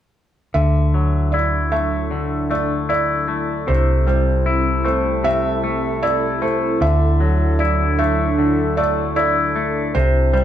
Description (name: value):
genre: rock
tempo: 76 BPM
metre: 4/4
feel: straight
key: unclear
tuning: A4 = 442 Hz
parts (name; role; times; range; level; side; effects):
- warbly tape-like pad; sustained chords; 0.5-10.4 s; F#3 to C5; -24 LUFS; right 2 dB; chorus, built-in reverb, phaser
- felt-muted upright piano; arpeggios; 0.5-10.4 s; C5 to E5; -23 LUFS; right 4 dB; none
- twangy electric guitar; arpeggios; 0.5-10.4 s; C3 to E4; -20 LUFS; left 4 dB; none
- hollow-body short-scale fingered electric bass; bass; 0.5-10.4 s; C2 to D2; -20 LUFS; equal; none
room: moderate studio reverb, RT60 0.7 s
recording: band playing live in one room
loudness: -16 LUFS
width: side -10 dB against mid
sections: 0.5-10.4 A section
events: none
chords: 0.5 Dadd9; 3.7 Am7/C; 6.8 Dadd9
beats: | 0.55 1.33 2.11 2.90 | 3.68 4.47 5.25 6.03 | 6.82 7.60 8.39 9.17 | 9.95